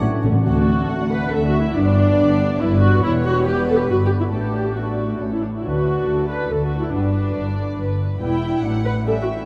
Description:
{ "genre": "quick classical-period movement for symphony orchestra", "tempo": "140 BPM", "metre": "3/4", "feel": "straight", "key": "D major", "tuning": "A4 = 440 Hz", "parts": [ { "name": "dark studio viola section", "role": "accompaniment", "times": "0.0-9.5 s", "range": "A3 to B4", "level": "-24 LUFS", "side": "equal", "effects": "none" }, { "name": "warm French horn section", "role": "sustained chords", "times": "0.0-9.2 s", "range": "F#3 to D4", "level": "-31 LUFS", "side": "equal", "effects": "none" }, { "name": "dark studio double bass section", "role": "bass", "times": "0.0-9.5 s", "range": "E1 to D2", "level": "-25 LUFS", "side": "equal", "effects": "none" }, { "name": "timpani", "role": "percussion", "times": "0.0-1.1 s", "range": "A2 to D3", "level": "-26 LUFS", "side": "equal", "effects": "none" }, { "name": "warm studio violin section", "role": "second line", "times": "0.4-9.5 s", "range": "A4 to G5", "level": "-33 LUFS", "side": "equal", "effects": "none" }, { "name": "dark studio cello section", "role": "bass", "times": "0.4-9.5 s", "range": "D2 to D3", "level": "-27 LUFS", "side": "equal", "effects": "none" }, { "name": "warm studio violin section", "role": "melody", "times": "0.5-9.5 s", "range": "B4 to G5", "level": "-38 LUFS", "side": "equal", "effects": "none" } ], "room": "moderate cathedral reverb, RT60 5.7 s", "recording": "in a vast, echoing space", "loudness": "-19 LUFS", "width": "mono", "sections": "0.5-9.5 A section", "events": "timpani fill 0.0-0.5", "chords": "0.0 A; 0.5 D; 1.7 G; 3.0 Em; 4.3 D/A; 5.2 A; 5.6 D; 6.9 G; 8.2 Em; 8.6 D/A", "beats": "0.01 | 0.45 0.89 1.32 | 1.75 2.18 2.60 | 3.03 3.46 3.89 | 4.32 4.76 5.19 | 5.63 6.07 6.50 | 6.93 7.36 7.78 | 8.20 8.63 9.06" }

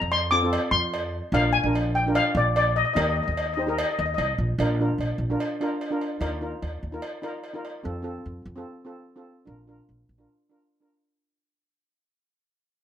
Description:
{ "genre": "calypso", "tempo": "147 BPM", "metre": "4/4", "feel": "swing 54% on 16ths", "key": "unclear", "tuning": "A4 = 441 Hz", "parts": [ { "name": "steel pan", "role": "melody", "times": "0.0-4.3 s", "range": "D5 to D6", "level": "-24 LUFS", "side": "left 3 dB", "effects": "plate reverb" }, { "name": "steel pan", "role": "accompaniment", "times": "0.0-11.0 s", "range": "C4 to C5", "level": "-29 LUFS", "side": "right 1 dB", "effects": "none" }, { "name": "upright bass", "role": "bass", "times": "0.0-10.2 s", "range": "Bb1 to F2", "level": "-28 LUFS", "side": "equal", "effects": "none" }, { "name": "cowbell", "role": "percussion", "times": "0.1-7.7 s", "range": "none", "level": "-32 LUFS", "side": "right 2 dB", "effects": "none" } ], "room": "moderate studio reverb, RT60 0.5 s", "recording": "none", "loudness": "-22 LUFS", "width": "side -9 dB against mid", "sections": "0.0-4.6 A section; 4.6-11.1 B section", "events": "fade-out 4.6-11.1", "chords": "0.0 F; 1.3 Bb7; 3.0 Eb; 4.6 Bb; 6.2 Ebsus2; 7.8 F; 9.5 Bb", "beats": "0.13 0.53 0.94 | 1.34 1.75 2.15 2.56 | 2.97 3.37 3.78 4.18 | 4.59 5.00 5.41 5.81 | 6.22 6.63 7.04 7.44 | 7.85 8.26 8.67 9.07 | 9.48 9.89 10.30 10.70" }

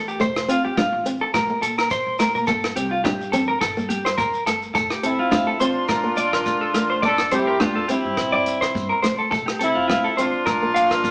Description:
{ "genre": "highlife guitar band", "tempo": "105 BPM", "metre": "4/4", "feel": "swing 55% on 16ths", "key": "F major", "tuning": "A4 = 440 Hz", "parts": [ { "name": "nylon-string guitar", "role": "accompaniment", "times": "0.0-10.9 s", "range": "G3 to D4", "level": "-25 LUFS", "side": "equal", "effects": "none" }, { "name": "semi-hollow electric guitar", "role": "arpeggios", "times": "0.0-11.1 s", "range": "F4 to F5", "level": "-21 LUFS", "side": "equal", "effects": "none" }, { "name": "upright bass", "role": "bass", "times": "0.0-11.0 s", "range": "E1 to Bb2", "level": "-34 LUFS", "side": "equal", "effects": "none" }, { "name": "shekere", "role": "percussion", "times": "0.1-11.1 s", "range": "none", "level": "-37 LUFS", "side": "equal", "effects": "none" }, { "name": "compact cocktail drum kit", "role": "drums", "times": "0.2-11.1 s", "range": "hi-hat, kick drum, rim click", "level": "-28 LUFS", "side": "equal", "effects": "none" }, { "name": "congas", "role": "percussion", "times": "0.2-11.1 s", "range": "none", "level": "-29 LUFS", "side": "equal", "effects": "none" }, { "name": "warm horn section", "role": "melody", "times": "5.1-11.1 s", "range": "C4 to A4", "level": "-22 LUFS", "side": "equal", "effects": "none" } ], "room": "moderate stone room reverb, RT60 1.1 s", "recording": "band playing live in one room, small speaker sound", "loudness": "-18 LUFS", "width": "side -35 dB against mid", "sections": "0.0-4.8 A section; 4.8-11.1 B section", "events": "none", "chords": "0.2 F; 1.3 Bbsus2; 2.5 Gm; 3.6 N.C.; 4.8 F; 5.9 Bb; 7.0 Gm; 8.2 C/G; 9.3 F; 10.5 Bb", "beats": "| 0.20 0.76 1.33 1.90 | 2.47 3.04 3.61 4.18 | 4.75 5.32 5.89 6.47 | 7.04 7.61 8.18 8.75 | 9.32 9.89 10.47 11.04" }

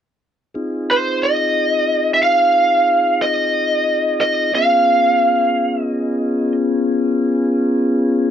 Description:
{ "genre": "blues", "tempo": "60 BPM (dotted quarters)", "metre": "12/8", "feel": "straight", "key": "F minor", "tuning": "A4 = 436 Hz", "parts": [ { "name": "mellow tonewheel organ", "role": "sustained chords", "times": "0.5-8.3 s", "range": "Cb4 to Ab4", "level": "-19 LUFS", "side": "left 2 dB", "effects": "slow rotary speaker" }, { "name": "lead guitar through a small cranked amp", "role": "melody", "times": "0.9-6.5 s", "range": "C5 to F5", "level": "-15 LUFS", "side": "right 1 dB", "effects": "overdrive" } ], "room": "moderate small room ambience, RT60 0.5 s", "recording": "dark, warm production", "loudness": "-14 LUFS", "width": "side -9 dB against mid", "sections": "0.5-8.3 A section", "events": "none", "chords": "0.5 Fm7; 4.6 Db7", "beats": "| 0.54 1.54 2.54 3.55 | 4.55 5.56 6.56 7.56" }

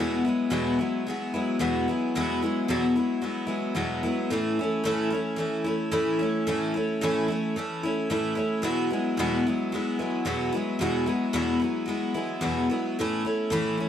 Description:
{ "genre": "rock", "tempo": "111 BPM", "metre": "4/4", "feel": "straight", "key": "A major", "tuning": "A4 = 440 Hz", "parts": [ { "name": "picked twelve-string acoustic guitar", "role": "solo", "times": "0.0-13.9 s", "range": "E2 to E4", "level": "-24 LUFS", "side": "left 1 dB", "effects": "none" } ], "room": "small room ambience", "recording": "dry, close 1970s-style studio recording", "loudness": "-24 LUFS", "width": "side -9 dB against mid", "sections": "0.0-13.9 A section", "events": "none", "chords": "0.0 Eadd9; 4.3 A; 8.6 Eadd9; 13.0 A", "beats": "0.51 1.05 1.60 | 2.14 2.68 3.23 3.77 | 4.31 4.85 5.39 5.93 | 6.47 7.01 7.55 8.10 | 8.64 9.18 9.72 10.26 | 10.80 11.34 11.88 12.42 | 12.96 13.50" }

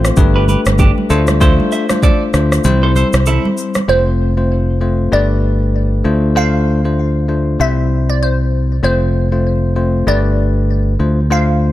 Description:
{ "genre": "afrobeats", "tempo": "97 BPM", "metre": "4/4", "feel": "swing 58% on 16ths", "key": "C major", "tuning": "A4 = 438 Hz", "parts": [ { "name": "bell-like tine electric piano", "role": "accompaniment", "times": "0.0-11.7 s", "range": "G3 to C5", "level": "-17 LUFS", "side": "left 4 dB", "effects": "none" }, { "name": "fingered electric bass", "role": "bass", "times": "0.0-11.7 s", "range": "F1 to D2", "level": "-14 LUFS", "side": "equal", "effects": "none" }, { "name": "deep house drum kit", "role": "drums", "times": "0.0-3.9 s", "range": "kick drum, rim click, shaker", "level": "-15 LUFS", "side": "equal", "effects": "none" }, { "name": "congas", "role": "percussion", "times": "0.2-3.9 s", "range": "none", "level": "-23 LUFS", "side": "right 4 dB", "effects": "none" }, { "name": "clean electric guitar", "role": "riff", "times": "0.4-3.5 s", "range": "D4 to E5", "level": "-22 LUFS", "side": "right 4 dB", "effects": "ping-pong delay" }, { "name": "glassy wavetable pluck", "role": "melody", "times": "3.9-11.7 s", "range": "C5 to F5", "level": "-20 LUFS", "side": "right 1 dB", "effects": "chorus, ping-pong delay" } ], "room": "light reverb", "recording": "dark, warm production", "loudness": "-11 LUFS", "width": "side -14 dB against mid", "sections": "0.0-3.9 A section; 3.9-11.7 B section", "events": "kick muted 2.6-3.9", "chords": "0.2 Gadd9; 1.1 Dm7; 2.6 C; 3.9 F; 5.1 Gadd9; 6.0 Dm7; 7.6 C; 8.8 F; 10.1 Gadd9; 11.0 Dm7", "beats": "0.17 0.79 | 1.41 2.03 2.65 3.27 | 3.88 4.50 5.12 5.74 | 6.36 6.98 7.60 8.21 | 8.83 9.45 10.07 10.69 | 11.31" }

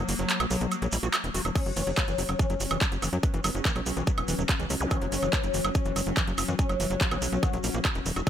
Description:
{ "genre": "psychedelic trance", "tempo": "143 BPM", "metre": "4/4", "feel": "straight", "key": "F# major", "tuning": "A4 = 436 Hz", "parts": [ { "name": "pulsing gated texture", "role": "sustained chords", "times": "0.0-8.3 s", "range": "F#3 to C#4", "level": "-35 LUFS", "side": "left 1 dB", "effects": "chorus, built-in reverb, sidechain pumping" }, { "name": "overdriven acid bass", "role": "riff", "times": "0.0-8.3 s", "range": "E3 to F#4", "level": "-36 LUFS", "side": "moving between left 4 dB and right 5 dB", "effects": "auto-pan, sidechain pumping, dub echo" }, { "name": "tight sequencer bass", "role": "bass", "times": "0.0-8.2 s", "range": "E1 to F#2", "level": "-31 LUFS", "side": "equal", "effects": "tube saturation" }, { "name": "big-room dance drum kit", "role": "drums", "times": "0.1-8.3 s", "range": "crash cymbal, handclaps, hi-hat, woodblock", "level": "-30 LUFS", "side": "right 2 dB", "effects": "overdrive" }, { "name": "shekere", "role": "percussion", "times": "0.1-8.3 s", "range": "none", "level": "-39 LUFS", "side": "right 3 dB", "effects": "none" }, { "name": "oud", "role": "melody", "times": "1.6-8.3 s", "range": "C#3 to F#4", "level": "-34 LUFS", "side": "left 4 dB", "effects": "phaser, sidechain pumping, dub echo" }, { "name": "electronic kick drum", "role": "drums", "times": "1.6-8.3 s", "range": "none", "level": "-27 LUFS", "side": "equal", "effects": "overdrive" }, { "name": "zap", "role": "sound effects", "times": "4.8-4.9 s", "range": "none", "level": "-36 LUFS", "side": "equal", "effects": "none" } ], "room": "little or no reverb", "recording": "none", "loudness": "-25 LUFS", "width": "side -10 dB against mid", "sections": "0.0-8.3 A section", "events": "break 0.0-1.6", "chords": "0.0 F#5", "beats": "0.30 0.71 1.14 | 1.55 1.97 2.39 2.81 | 3.23 3.65 4.07 4.49 | 4.91 5.33 5.75 6.17 | 6.59 7.01 7.43 7.85 | 8.27" }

